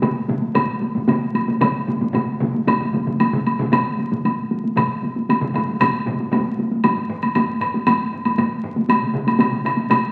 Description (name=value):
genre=japanese traditional, taiko drum ensemble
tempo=116 BPM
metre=4/4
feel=straight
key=none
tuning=none
part: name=solo taiko drums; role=percussion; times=0.0-8.8 s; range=none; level=-36 LUFS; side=equal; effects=none
part: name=taiko ensemble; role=percussion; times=0.0-10.0 s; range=none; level=-22 LUFS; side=equal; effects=none
part: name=taiko ensemble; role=percussion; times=0.0-10.0 s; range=none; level=-29 LUFS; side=equal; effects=none
part: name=woodblock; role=percussion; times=0.0-10.0 s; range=none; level=-25 LUFS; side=equal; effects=none
part: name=taiko ensemble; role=percussion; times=0.5-5.9 s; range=none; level=-32 LUFS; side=equal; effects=none
room=wet large studio reverb, RT60 1.3 s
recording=very old 78 rpm record, vinyl crackle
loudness=-20 LUFS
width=mono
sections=0.0-6.8 A section; 6.8-10.1 B section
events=speeding up 0.0-10.1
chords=none